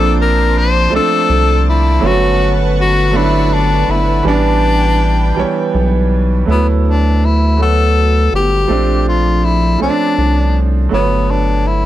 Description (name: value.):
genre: slow six-eight R&B.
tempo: 54 BPM (dotted quarters).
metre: 6/8.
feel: straight.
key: D major.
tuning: A4 = 440 Hz.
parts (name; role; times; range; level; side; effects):
breathy tenor saxophone; melody; 0.0-11.9 s; B3 to C5; -16 LUFS; left 3 dB; none.
clear concert grand piano; accompaniment; 0.0-11.9 s; E3 to C#5; -17 LUFS; right 6 dB; none.
lush unison pad; sustained chords; 0.0-6.5 s; B4 to D6; -25 LUFS; right 1 dB; chorus.
rubbery square bass; bass; 0.0-11.9 s; G1 to D2; -14 LUFS; equal; none.
room: light reverb.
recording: none.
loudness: -11 LUFS.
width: side -13 dB against mid.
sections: 0.0-6.5 A section; 6.5-11.9 B section.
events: none.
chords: 0.0 Bbmaj9; 2.0 Gmaj9#11; 4.3 A9sus4; 6.5 D69; 8.7 Bbmaj9; 10.9 Gmaj9#11.